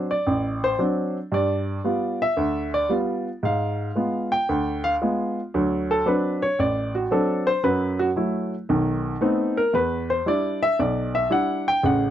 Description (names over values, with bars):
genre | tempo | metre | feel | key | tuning
jazz | 114 BPM | 4/4 | swing 68% on 8ths | unclear | A4 = 440 Hz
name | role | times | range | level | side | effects
warm baby grand piano | solo | 0.0-12.1 s | A1 to G5 | -21 LUFS | equal | none
room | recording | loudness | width
light reverb | dry, close 1970s-style studio recording | -21 LUFS | side -11 dB against mid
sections
0.0-12.1 A section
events
grand piano solo 0.0-12.1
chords
0.0 D7; 1.3 G7; 3.4 G#dim7; 5.5 D7; 7.6 F#m7; 8.7 B7b9; 9.7 Em7